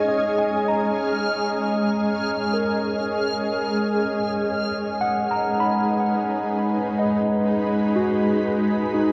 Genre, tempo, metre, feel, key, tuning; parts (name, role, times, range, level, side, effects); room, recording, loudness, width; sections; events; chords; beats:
ambient; 61 BPM; 4/4; straight; G# dorian; A4 = 440 Hz
shimmering ambient pad; sustained chords; 0.0-9.1 s; G#3 to G#5; -25 LUFS; equal; chorus, built-in reverb
tine electric piano; arpeggios; 0.0-9.1 s; D#4 to B5; -28 LUFS; equal; delay
bowed-like drone; drone; 5.4-9.1 s; G#3 to D#4; -36 LUFS; equal; built-in reverb
backwards swelling texture; texture; 0.0-4.0 s; E#6; -34 LUFS; equal; built-in reverb
wet huge ambient reverb, RT60 7.1 s; worn, warbling old tape, cassette tape, warbly pitch drift; -23 LUFS; mono
0.0-4.0 A section; 4.0-9.1 B section
0.0 C#add9/G#; 4.0 G#m9
| 0.09 1.07 2.06 3.04 | 4.03 5.01 5.99 6.98 | 7.96 8.94